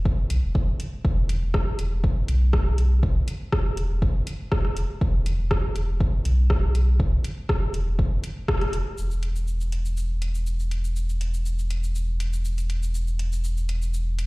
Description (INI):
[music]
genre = dub techno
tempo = 121 BPM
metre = 4/4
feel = straight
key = unclear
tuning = A4 = 440 Hz
[part]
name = warm sub bass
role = bass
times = 0.0-14.3 s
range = E1 to B1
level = -23 LUFS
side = equal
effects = sidechain pumping
[part]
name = electronic kick drum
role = drums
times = 0.1-8.6 s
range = none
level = -24 LUFS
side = equal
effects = overdrive
[part]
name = deep house drum kit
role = drums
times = 0.3-14.3 s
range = hi-hat, rim click, shaker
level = -32 LUFS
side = equal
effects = overdrive
[sound]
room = little or no reverb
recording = played on a big sound system in a bare room, large studio reverb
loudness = -22 LUFS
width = side -23 dB against mid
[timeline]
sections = 0.0-9.0 A section; 9.0-14.3 B section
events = band accent 8.5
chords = none